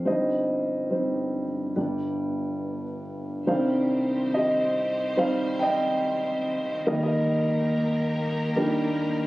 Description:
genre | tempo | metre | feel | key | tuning
acoustic folk-pop ballad | 71 BPM | 4/4 | straight | C minor | A4 = 439 Hz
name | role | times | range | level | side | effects
dark grand piano | melody | 0.0-9.3 s | G1 to G5 | -24 LUFS | equal | none
warm chamber string section | sustained chords | 3.5-9.3 s | Eb3 to C5 | -34 LUFS | left 1 dB | none
room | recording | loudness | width
moderate studio ambience, RT60 0.5 s | recorded on a phone in the room, studio reverb, compression | -23 LUFS | side -18 dB against mid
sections
0.0-3.5 A section; 3.5-9.3 B section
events
none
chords
0.1 Cm/G; 1.8 G; 3.5 Cmadd9; 6.9 Ebmaj7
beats
| 0.05 0.90 1.76 2.62 | 3.47 4.32 5.17 6.02 | 6.87 7.72 8.56

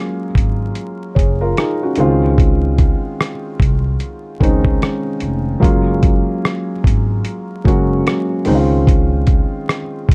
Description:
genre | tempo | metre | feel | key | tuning
lo-fi hip hop | 74 BPM | 4/4 | swing 60% on 16ths | Db major | A4 = 440 Hz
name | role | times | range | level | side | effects
felt-muted upright piano | accompaniment | 0.0-10.1 s | Eb3 to Db5 | -21 LUFS | equal | cassette tape, low-pass filter, plate reverb
upright bass | bass | 0.4-10.1 s | F1 to Db2 | -21 LUFS | equal | none
dusty soul sampler-style drum kit | drums | 0.4-10.1 s | hi-hat, kick drum, rim click | -17 LUFS | equal | none
room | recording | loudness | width
light reverb | dark, warm production, vinyl crackle | -16 LUFS | mono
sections
0.0-10.1 A section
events
none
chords
0.0 Gbmaj7; 2.0 Dbmaj7; 5.6 Gbmaj7; 8.5 Dbmaj7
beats
0.77 1.58 | 2.39 3.20 4.01 4.82 | 5.63 6.44 7.25 8.06 | 8.87 9.68

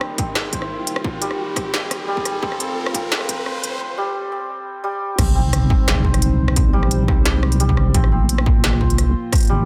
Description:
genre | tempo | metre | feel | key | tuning
half-time drum and bass | 174 BPM | 4/4 | half-time | C minor | A4 = 441 Hz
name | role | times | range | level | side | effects
dark analog pad | sustained chords | 0.0-9.7 s | G3 to G5 | -29 LUFS | equal | chorus, sidechain pumping
santur | arpeggios | 0.0-9.7 s | G3 to C5 | -29 LUFS | equal | tape echo
industrial drum kit | drums | 0.0-9.5 s | crash cymbal, hi-hat, rim click, snare drum | -26 LUFS | equal | small room ambience
riser and sub drop | sound effects | 0.0-6.6 s | none | -31 LUFS | equal | none
electronic kick drum | drums | 0.2-9.4 s | none | -21 LUFS | equal | distortion, small room ambience
deep soft wobble bass | bass | 5.2-9.7 s | Ab1 to C2 | -20 LUFS | equal | chorus
room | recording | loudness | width
light reverb, digital ambience | dense, heavily limited modern master, high-pass filter | -19 LUFS | mono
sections
0.0-5.2 A section; 5.2-9.7 B section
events
build-up 0.0-5.2; riser 0.0-3.8; filter sweep 0.0-5.2; break 3.8-5.2; drop 5.2-9.7; impact 5.2-6.6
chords
0.0 Eb; 2.4 F; 5.2 Cm; 7.9 Bb5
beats
0.01 0.36 0.70 | 1.05 1.39 1.74 2.08 | 2.43 2.77 3.12 3.46 | 3.81 4.15 4.50 4.84 | 5.19 5.53 5.88 6.22 | 6.57 6.91 7.25 7.60 | 7.95 8.29 8.63 8.98 | 9.32

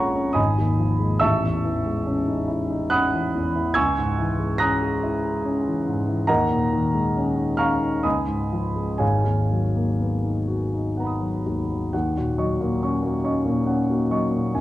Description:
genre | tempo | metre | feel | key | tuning
classical, impressionist solo piano | 60-72 BPM | 3/4 | rubato | unclear | A4 = 441 Hz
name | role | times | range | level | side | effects
warm grand piano | solo | 0.0-14.6 s | G#1 to A#6 | -20 LUFS | equal | none
room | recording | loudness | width
wet recital hall reverb, RT60 1.4 s | none | -20 LUFS | side -15 dB against mid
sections
0.0-11.9 A section; 11.9-14.6 B section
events
none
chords
0.4 G#m6; 1.2 Amaj7#11; 3.8 C#m6; 6.3 D#7sus4; 8.0 C#9; 9.0 G#m9; 11.9 D#m7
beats
0.37 | 1.23 2.07 2.92 | 3.76 4.59 5.43 | 6.29 7.15 8.04 | 9.02 10.01 10.97 | 11.93 12.80 13.66 | 14.55

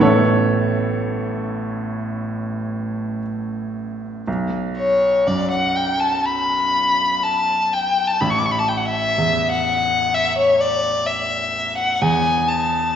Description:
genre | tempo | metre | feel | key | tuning
classical, impressionist duo for violin and grand piano | 55-64 BPM | 4/4 | rubato | unclear | A4 = 440 Hz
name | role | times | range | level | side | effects
clear baby grand piano | accompaniment | 0.0-13.0 s | A1 to C#5 | -22 LUFS | right 2 dB | none
rich violin | melody | 4.8-13.0 s | C#5 to D6 | -17 LUFS | left 2 dB | none
room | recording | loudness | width
wet scoring stage reverb, RT60 1.6 s | heard from further back in the room, nothing above 7.9 kHz | -17 LUFS | side -8 dB against mid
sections
0.0-4.3 A section; 4.3-13.0 B section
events
none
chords
0.0 Aadd9; 4.3 B5; 8.2 A5; 12.0 E5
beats
| 0.01 1.08 2.15 3.23 | 4.27 5.27 6.26 7.24 | 8.21 9.17 10.13 11.06 | 12.01 12.95

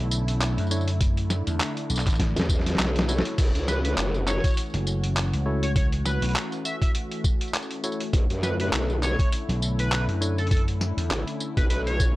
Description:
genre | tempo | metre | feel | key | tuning
glitch hop | 101 BPM | 4/4 | swing 56% on 16ths | unclear | A4 = 438 Hz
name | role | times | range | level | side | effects
warm analog pad | sustained chords | 0.0-12.2 s | D3 to F#4 | -33 LUFS | left 1 dB | chorus, vintage 12-bit sampler grit, sidechain pumping
vintage slap bass | bass | 0.0-11.1 s | F#1 to F#2 | -25 LUFS | equal | none
boom bap sampler-style drum kit | drums | 0.1-12.1 s | crash cymbal, handclaps, hi-hat, snare drum, tambourine | -29 LUFS | equal | none
barky tine electric piano | stabs | 0.7-10.4 s | D4 to C#5 | -35 LUFS | equal | vintage 12-bit sampler grit, sidechain pumping, tape echo
electronic kick drum | drums | 1.0-12.1 s | none | -23 LUFS | equal | none
growl bass | bass | 2.4-4.4, 8.1-12.1 s | F#1 to F#2 | -26 LUFS | equal | chorus, tube saturation
sync lead | melody | 3.7-12.1 s | A4 to E5 | -33 LUFS | equal | chorus, tape echo
room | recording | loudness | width
little or no reverb | dry, gritty hardware recording, transformer saturation | -22 LUFS | side -18 dB against mid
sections
0.0-12.2 A section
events
drum fill 2.2-3.4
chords
0.0 Bm11; 3.4 F#m7; 8.1 Bm11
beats
0.41 | 1.01 1.60 2.20 2.79 | 3.38 3.98 4.57 5.17 | 5.76 6.35 6.95 7.54 | 8.14 8.73 9.32 9.92 | 10.51 11.11 11.70

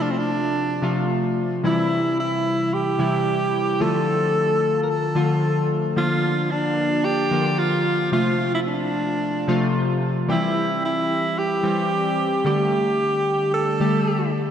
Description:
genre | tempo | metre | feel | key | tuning
pop | 111 BPM | 4/4 | swing 55% on 16ths | C mixolydian | A4 = 443 Hz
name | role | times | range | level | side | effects
bright alto saxophone | melody | 0.0-14.3 s | C4 to Bb4 | -22 LUFS | right 1 dB | diffuse ambient delay
chorused retro synth keys | accompaniment | 0.0-14.5 s | C3 to G4 | -22 LUFS | left 1 dB | none
room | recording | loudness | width
wet plate reverb, RT60 3.2 s | dreamy mix soaked in reverb | -19 LUFS | side -8 dB against mid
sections
0.0-14.5 A section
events
none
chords
0.0 F; 1.6 C; 3.8 Dm; 6.0 Bb; 8.1 F; 10.3 C; 12.5 Gsus2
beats
0.02 0.56 1.10 | 1.64 2.18 2.73 3.27 | 3.81 4.35 4.89 5.43 | 5.97 6.51 7.05 7.59 | 8.13 8.67 9.21 9.75 | 10.29 10.83 11.37 11.91 | 12.45 12.99 13.54 14.08

